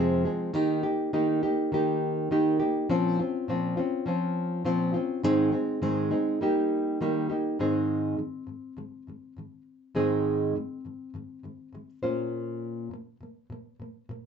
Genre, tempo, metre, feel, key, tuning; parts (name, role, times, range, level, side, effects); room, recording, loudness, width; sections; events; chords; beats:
pop; 102 BPM; 4/4; swing 55% on 16ths; Ab major; A4 = 440 Hz
nylon-string guitar; solo; 0.0-14.3 s; F2 to C5; -26 LUFS; equal
moderate small room ambience, RT60 0.5 s; nothing above 8.0 kHz; -25 LUFS; side -7 dB against mid
0.0-7.6 A section; 7.6-14.3 B section
0.0 Fm; 0.5 Eb; 2.9 Bbmadd9; 5.2 Ab; 6.4 Eb; 7.6 Ab; 12.0 Bbmadd9
| 0.55 1.13 1.72 2.31 | 2.90 3.48 4.07 4.66 | 5.25 5.84 6.42 7.01 | 7.60 8.19 8.78 9.37 | 9.96 10.55 11.14 11.73 | 12.32 12.91 13.50 14.09